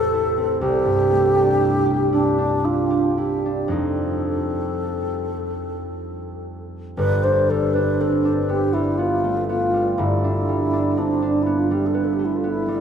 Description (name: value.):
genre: classical, impressionist duo for alto flute and harp.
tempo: 36-42 BPM (dotted quarters).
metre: 6/8.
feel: rubato.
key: G mixolydian.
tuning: A4 = 440 Hz.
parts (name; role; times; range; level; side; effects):
mellow wooden-headed alto flute; melody; 0.0-12.8 s; D4 to C5; -21 LUFS; equal; none.
concert harp; accompaniment; 0.0-12.8 s; G1 to A4; -21 LUFS; right 1 dB; none.
room: wet cathedral reverb, RT60 6.3 s.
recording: in a vast, echoing space.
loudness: -18 LUFS.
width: side -8 dB against mid.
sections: 0.0-7.0 A section; 7.0-12.8 B section.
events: none.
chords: 0.0 Am7; 0.6 C69; 3.7 F9; 7.0 Gadd9.